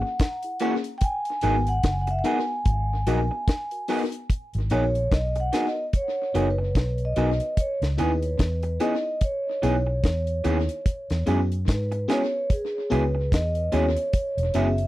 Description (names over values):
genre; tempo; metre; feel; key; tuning
lovers rock reggae; 73 BPM; 4/4; swing 58% on 16ths; G# minor; A4 = 440 Hz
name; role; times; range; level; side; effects
vibraphone with soft mallets; melody; 0.0-14.9 s; G#4 to G#5; -28 LUFS; right 1 dB; tape echo
electric guitar through a small old amp; stabs; 0.0-14.7 s; E3 to G#4; -28 LUFS; right 4 dB; none
deep reggae drum kit; drums; 0.2-14.9 s; hi-hat, kick drum, snare drum; -25 LUFS; equal; tape echo
FM electric piano with soft pad layer; accompaniment; 0.4-14.7 s; A#3 to A#4; -28 LUFS; left 4 dB; chorus, tremolo
vintage muted fingered electric bass; bass; 1.4-14.9 s; E1 to G#2; -25 LUFS; equal; none
room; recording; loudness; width
little or no reverb; dry, close 1970s-style studio recording; -22 LUFS; side -16 dB against mid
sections
0.0-4.3 A section; 4.3-14.9 B section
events
vibraphone solo 4.3-14.9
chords
0.0 F#7; 1.0 G#m7; 7.6 C#m7; 10.9 E6